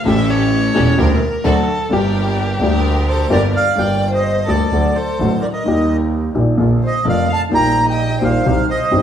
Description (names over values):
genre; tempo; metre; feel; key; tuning
tango; 129 BPM; 4/4; rubato; G minor; A4 = 441 Hz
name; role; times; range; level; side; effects
dark violin; second line; 0.0-9.0 s; G4 to G5; -22 LUFS; left 1 dB; none
warm upright piano; accompaniment; 0.0-9.0 s; E1 to G4; -17 LUFS; left 2 dB; none
clear double bass; bass; 0.0-9.0 s; E1 to Eb2; -19 LUFS; right 2 dB; none
bright symphonic string section; stabs; 0.1-3.5 s; C#4 to Bb4; -25 LUFS; right 2 dB; none
bandoneon; melody; 3.1-9.0 s; C5 to Bb5; -19 LUFS; right 2 dB; none
room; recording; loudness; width
wet large studio reverb, RT60 1.2 s; band playing live in one room; -13 LUFS; side -9 dB against mid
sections
0.0-3.8 A section; 3.8-9.0 B section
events
violin solo 0.0-3.8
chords
0.0 A7; 1.0 Gm/D; 1.4 D; 1.9 Gm; 4.7 D; 5.7 Eb; 6.6 Bb; 7.5 Eb/Bb; 8.4 Cm